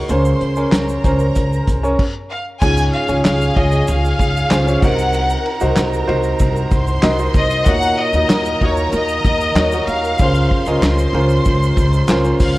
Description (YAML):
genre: piano-driven pop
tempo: 95 BPM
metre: 4/4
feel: straight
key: Db major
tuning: A4 = 442 Hz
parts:
  - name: rich studio violin section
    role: second line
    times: 0.0-12.6 s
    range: Ab4 to C6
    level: -25 LUFS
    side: equal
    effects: tape echo
  - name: clear baby grand piano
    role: accompaniment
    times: 0.0-12.6 s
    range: Ab2 to Eb5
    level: -19 LUFS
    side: right 1 dB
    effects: none
  - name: upright bass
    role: bass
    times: 0.0-12.6 s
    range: C2 to Eb2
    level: -18 LUFS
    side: equal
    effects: none
  - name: unplugged drum kit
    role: drums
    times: 0.1-12.5 s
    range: crash cymbal, handclaps, hi-hat, kick drum, ride cymbal, snare drum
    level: -18 LUFS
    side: equal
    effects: none
  - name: egg shaker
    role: percussion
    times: 0.1-12.5 s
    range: none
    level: -39 LUFS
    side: right 4 dB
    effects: none
  - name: clear studio violin section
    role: melody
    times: 2.3-12.6 s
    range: Db5 to Ab5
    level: -20 LUFS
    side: left 1 dB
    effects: none
room: light reverb, small room ambience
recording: worn, warbling old tape, cassette tape, warbly pitch drift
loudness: -13 LUFS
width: side -18 dB against mid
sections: 0.0-2.6 A section; 2.6-12.6 B section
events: stop 2.0-2.6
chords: 0.1 Bbmadd9/Db; 2.6 Db; 4.8 Cm7b5; 7.7 Ebm7; 10.2 Bbmadd9/Db